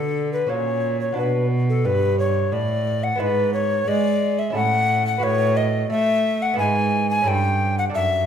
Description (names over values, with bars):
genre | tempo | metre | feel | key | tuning
classical, baroque-style sonata movement with continuo | 89 BPM | 3/4 | straight | A major from 3.2 s | A4 = 440 Hz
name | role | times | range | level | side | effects
hollow alto recorder | melody | 0.0-8.3 s | A4 to G#5 | -21 LUFS | left 4 dB | none
lute | accompaniment | 0.0-8.3 s | F#2 to B4 | -28 LUFS | right 3 dB | none
warm cello | bass | 0.0-8.3 s | F#2 to A3 | -23 LUFS | right 3 dB | none
room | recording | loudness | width
moderate recital hall reverb, RT60 1.6 s | minimal, uncompressed stereo recording | -18 LUFS | side -8 dB against mid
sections
0.0-8.3 A section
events
none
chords
0.5 F#/A#; 1.2 Bm; 3.2 E/G#; 4.6 A; 5.2 B5/A; 6.6 E/G#; 7.3 A7/G